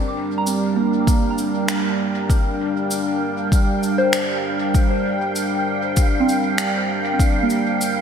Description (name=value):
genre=ambient dub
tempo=98 BPM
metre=4/4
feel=swing 59% on 16ths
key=G minor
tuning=A4 = 441 Hz
part: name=warm analog pad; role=sustained chords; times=0.0-8.0 s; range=G3 to G5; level=-21 LUFS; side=equal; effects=chorus
part: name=soft synth bell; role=arpeggios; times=0.0-8.0 s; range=Bb3 to D6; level=-24 LUFS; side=right 2 dB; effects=chorus, phaser, dub echo
part: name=wind-like tuned noise texture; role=texture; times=0.3-8.0 s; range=F5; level=-28 LUFS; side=right 7 dB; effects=built-in reverb
part: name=cabasa and finger snaps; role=drums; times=0.5-8.0 s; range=none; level=-27 LUFS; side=equal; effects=small room ambience, dub echo
part: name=electronic kick drum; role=drums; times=1.1-7.3 s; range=none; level=-17 LUFS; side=left 1 dB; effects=small room ambience
room=light reverb, small room reverb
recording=none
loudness=-17 LUFS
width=side -7 dB against mid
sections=0.0-8.0 A section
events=none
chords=0.0 Gm7